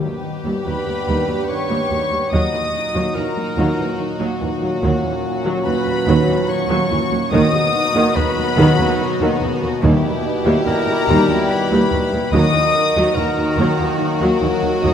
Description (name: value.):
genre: cinematic, suspense film score.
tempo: 72 BPM.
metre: 3/4.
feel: straight.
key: Eb phrygian.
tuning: A4 = 436 Hz.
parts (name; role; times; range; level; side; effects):
warm symphonic violin section; second line; 0.0-14.9 s; Db4 to B4; -25 LUFS; left 3 dB; none.
dark symphonic viola section; accompaniment; 0.0-14.9 s; Db3 to G4; -23 LUFS; equal; none.
warm French horn section; sustained chords; 0.0-14.9 s; Gb3 to G4; -26 LUFS; left 4 dB; none.
warm trombone section; sustained chords; 0.0-14.9 s; G2 to G3; -26 LUFS; right 3 dB; none.
warm symphonic cello section; riff; 0.0-14.9 s; Eb3 to Eb4; -24 LUFS; right 1 dB; none.
rich symphonic cello section; bass; 0.0-14.9 s; Eb2; -24 LUFS; right 2 dB; none.
timpani; percussion; 0.0-1.0, 7.3-13.5 s; Eb3; -28 LUFS; left 3 dB; none.
warm symphonic violin section; melody; 0.7-14.9 s; Bb5 to Eb6; -24 LUFS; left 5 dB; none.
mellow clarinet; second line; 0.7-14.9 s; Bb4 to D#5; -23 LUFS; equal; none.
warm symphonic double bass section; bass; 0.7-14.9 s; Eb2; -23 LUFS; right 3 dB; none.
room: wet concert hall reverb, RT60 2.3 s.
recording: none.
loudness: -15 LUFS.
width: side -8 dB against mid.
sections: 0.0-14.9 A section.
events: none.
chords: 0.0 Eb7alt; 2.3 Ebm; 7.3 B/D#; 9.8 Em/Eb; 12.3 Ebm.